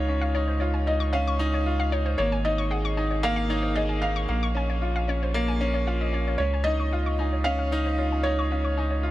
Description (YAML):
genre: piano and strings electronica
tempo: 114 BPM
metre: 4/4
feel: straight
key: Db major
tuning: A4 = 442 Hz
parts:
  - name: felt-muted upright piano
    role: melody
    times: 0.0-9.1 s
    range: Db5 to F5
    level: -31 LUFS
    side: equal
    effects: tape echo
  - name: bright upright piano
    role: riff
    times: 0.0-9.1 s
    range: Bb3 to Ab4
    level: -28 LUFS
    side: equal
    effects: tape echo
  - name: round analog bass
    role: bass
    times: 0.0-9.1 s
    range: Ab1 to Db2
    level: -26 LUFS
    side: equal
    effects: tube saturation
  - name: warbly dusty pluck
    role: arpeggios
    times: 0.2-8.9 s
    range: C5 to Db6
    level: -34 LUFS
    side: left 3 dB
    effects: chorus, tape echo
room: light reverb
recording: none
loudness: -23 LUFS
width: side -15 dB against mid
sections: 0.0-9.1 A section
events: none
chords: 0.0 Dbadd9; 2.2 Absus2; 4.3 Bbm; 6.4 Dbadd9